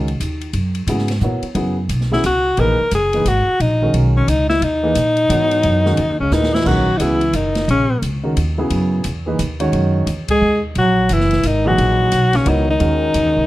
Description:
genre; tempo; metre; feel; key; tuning
modal jazz; 176 BPM; 3/4; swing 63% on 8ths; Eb phrygian; A4 = 440 Hz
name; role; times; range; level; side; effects
warm concert grand piano; accompaniment; 0.0-13.5 s; Bb2 to Db5; -21 LUFS; right 1 dB; none
upright bass; bass; 0.0-13.5 s; Gb1 to Bb2; -19 LUFS; equal; none
open jazz drum kit; drums; 0.1-13.2 s; crash cymbal, hi-hat, kick drum, ride cymbal, snare drum; -28 LUFS; equal; none
clear alto saxophone; melody; 2.1-8.0, 10.3-13.5 s; Db4 to Bb4; -16 LUFS; left 2 dB; none
mellow bass clarinet; second line; 6.2-8.0, 10.3-13.5 s; Db3 to Ab3; -22 LUFS; right 3 dB; none
room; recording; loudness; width
light reverb; dark, warm production; -14 LUFS; side -16 dB against mid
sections
0.0-13.5 A section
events
drum fill 6.3-6.7; band accent 10.2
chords
0.0 Ebm7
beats
0.20 | 0.54 0.88 1.22 | 1.56 1.90 2.24 | 2.58 2.92 3.26 | 3.60 3.94 4.28 | 4.62 4.96 5.30 | 5.64 5.98 6.32 | 6.66 7.00 7.34 | 7.68 8.02 8.37 | 8.71 9.05 9.39 | 9.73 10.07 10.41 | 10.75 11.09 11.43 | 11.78 12.12 12.46 | 12.80 13.14

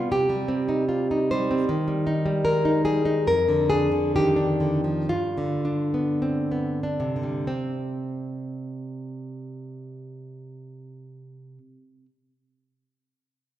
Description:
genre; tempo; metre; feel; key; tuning
romantic piece for solo classical guitar; 44-85 BPM; 4/4; rubato; C minor; A4 = 440 Hz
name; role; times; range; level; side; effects
nylon-string guitar; solo; 0.0-12.1 s; F2 to C5; -23 LUFS; equal; none
room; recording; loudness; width
wet recital hall reverb, RT60 1.8 s; recorded in a church or concert hall; -22 LUFS; side -12 dB against mid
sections
0.0-7.5 A section; 7.5-12.1 B section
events
slowing down 0.0-7.5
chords
0.1 Cm; 1.7 Eb; 3.3 Fm13; 5.1 G7; 7.5 C5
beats
| 0.09 0.86 1.67 2.45 | 3.29 4.16 5.12 6.23 | 7.50 8.69 9.85 10.98

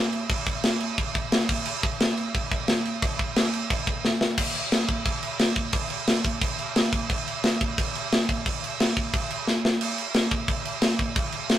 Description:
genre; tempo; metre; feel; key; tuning
punk; 177 BPM; 4/4; straight; none; none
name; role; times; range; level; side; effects
tight metal drum kit; drums; 0.1-11.6 s; crash cymbal, kick drum, snare drum; -23 LUFS; equal; none
room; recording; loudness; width
little or no reverb; rough rehearsal-room recording; -23 LUFS; side -12 dB against mid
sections
0.0-4.4 A section; 4.4-11.6 B section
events
drum fill 4.0-4.4, 9.5-9.8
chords
none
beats
| 0.30 0.64 0.98 1.32 | 1.67 2.00 2.35 2.69 | 3.02 3.37 3.71 4.04 | 4.38 4.72 5.06 5.40 | 5.74 6.08 6.42 6.76 | 7.10 7.44 7.78 8.12 | 8.46 8.80 9.13 9.47 | 9.81 10.15 10.49 10.83 | 11.17 11.51

